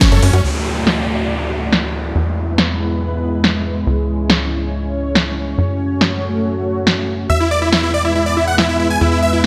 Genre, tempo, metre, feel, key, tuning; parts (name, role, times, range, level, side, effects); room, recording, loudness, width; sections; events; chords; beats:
uplifting trance; 140 BPM; 4/4; straight; A4 = 443 Hz
big supersaw lead; melody; 0.0-0.4, 7.3-9.4 s; C#4 to G#5; -19 LUFS; equal; sidechain pumping, dub echo
lush unison pad; sustained chords; 0.0-9.5 s; G#3 to D5; -24 LUFS; equal; chorus, phaser, sidechain pumping
punchy analog drum machine; drums; 0.0-9.5 s; crash cymbal, hi-hat, snare drum; -19 LUFS; equal; low-pass filter on hats, low-pass filter on snare, low-pass filter on cymbals, low-pass filter on room
tight sequencer bass; bass; 0.1-9.5 s; C#2 to F#2; -22 LUFS; equal; sidechain pumping
downlifter; sound effects; 0.4-3.9 s; -27 LUFS; equal
moderate lush hall reverb, RT60 1.8 s, digital ambience; -17 LUFS; mono
0.4-9.5 A section
band accent 0.0
0.4 Dadd9; 2.2 E; 3.9 C#m; 5.6 F#m; 7.3 E
0.01 | 0.44 0.87 1.30 1.73 | 2.15 2.58 3.01 3.44 | 3.87 4.30 4.72 5.15 | 5.58 6.01 6.44 6.87 | 7.30 7.72 8.15 8.58 | 9.01 9.44